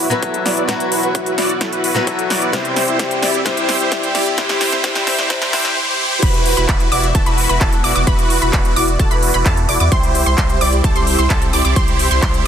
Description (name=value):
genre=EDM, festival progressive house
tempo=130 BPM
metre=4/4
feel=straight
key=E minor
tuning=A4 = 440 Hz
part: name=picked swing-style acoustic guitar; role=accompaniment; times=0.0-5.8 s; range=C3 to B4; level=-22 LUFS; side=left 4 dB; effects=sidechain pumping, dub echo
part: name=lush unison pad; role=sustained chords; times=0.0-12.5 s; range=G3 to F#5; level=-26 LUFS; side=left 1 dB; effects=chorus, phaser, sidechain pumping
part: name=supersaw chords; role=riff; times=0.0-12.4 s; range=E4 to D5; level=-19 LUFS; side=right 2 dB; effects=phaser, sidechain pumping, low-pass filter, dub echo
part: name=riser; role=sound effects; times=0.4-6.2 s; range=none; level=-27 LUFS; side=equal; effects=none
part: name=big-room dance drum kit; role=drums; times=0.1-12.4 s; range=crash cymbal, handclaps, hi-hat, snare drum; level=-22 LUFS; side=left 1 dB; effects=overdrive, high-pass filter on hats, high-pass filter on toms, high-pass filter on snare, high-pass filter on cymbals
part: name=electronic kick drum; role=drums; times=0.2-12.3 s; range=none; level=-17 LUFS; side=equal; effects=overdrive, high-pass filter on kick
part: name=wide unison pluck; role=arpeggios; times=6.2-12.4 s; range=A5 to D6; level=-21 LUFS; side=equal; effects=sidechain pumping, dub echo
part: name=saturated sub bass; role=bass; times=6.2-12.4 s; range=E1 to E2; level=-19 LUFS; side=equal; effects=sidechain pumping
room=light reverb, digital ambience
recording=dense, heavily limited modern master, high-pass filter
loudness=-13 LUFS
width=side -9 dB against mid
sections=0.0-6.2 A section; 6.2-12.5 B section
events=build-up 0.0-6.2; drum fill 0.0-5.8; filter sweep on supersaw synth 0.0-6.2; filter sweep 0.0-6.2; riser 0.4-6.2; drop 6.2-12.5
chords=0.0 Esus2; 2.5 C; 6.2 Esus2; 9.9 C